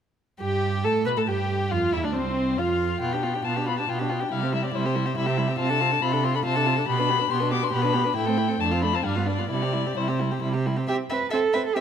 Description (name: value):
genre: quick classical-period movement for string quartet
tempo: 138 BPM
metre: 3/4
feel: rubato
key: C major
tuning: A4 = 439 Hz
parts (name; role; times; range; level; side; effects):
- dark violin; melody; 0.4-11.8 s; C5 to D6; -27 LUFS; left 9 dB; none
- warm violin; second line; 0.4-11.8 s; C4 to E5; -30 LUFS; left 3 dB; none
- warm viola; accompaniment; 0.4-11.8 s; G3 to B4; -29 LUFS; right 2 dB; none
- dark cello; bass; 0.4-11.8 s; C2 to B4; -26 LUFS; right 5 dB; none
room: moderate scoring stage reverb, RT60 2.0 s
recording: close, detailed microphones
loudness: -22 LUFS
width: side -8 dB against mid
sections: 0.4-10.9 A section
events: none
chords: 0.4 Gadd9; 1.7 Dm7; 3.0 G7/B; 4.3 C; 5.6 Dm7/C; 6.9 G/B; 8.2 Am; 8.6 Dm7/F; 9.1 G7; 9.5 C